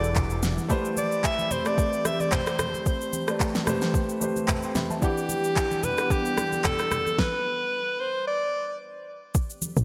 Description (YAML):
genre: amapiano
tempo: 111 BPM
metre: 4/4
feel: swing 55% on 16ths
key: unclear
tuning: A4 = 440 Hz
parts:
  - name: bright alto saxophone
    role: melody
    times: 0.0-8.8 s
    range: G4 to E5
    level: -30 LUFS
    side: equal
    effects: digital delay
  - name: warm grand piano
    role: accompaniment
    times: 0.0-7.2 s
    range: E3 to C6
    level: -33 LUFS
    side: equal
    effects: none
  - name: glassy FM pad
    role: sustained chords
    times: 0.0-9.8 s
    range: E3 to F#5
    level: -38 LUFS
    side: equal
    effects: ensemble chorus, built-in reverb
  - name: fingered electric bass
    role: bass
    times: 0.0-0.6 s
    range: E1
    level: -30 LUFS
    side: equal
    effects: none
  - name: smooth R&B drum kit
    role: drums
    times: 0.0-9.8 s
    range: handclaps, kick drum, rim click, shaker, snare drum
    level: -30 LUFS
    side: equal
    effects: overdrive, gated reverb
  - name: congas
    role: percussion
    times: 0.0-9.8 s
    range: none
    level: -38 LUFS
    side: equal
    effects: none
  - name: woody log drum bass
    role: bass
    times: 9.8 s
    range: A1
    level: -22 LUFS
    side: equal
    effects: none
room: moderate lush hall reverb, RT60 2.3 s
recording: bright 1980s-style digital production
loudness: -26 LUFS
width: mono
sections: 0.0-9.3 A section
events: stop 7.2-9.3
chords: 0.0 Em9; 0.7 Am9; 5.0 Em9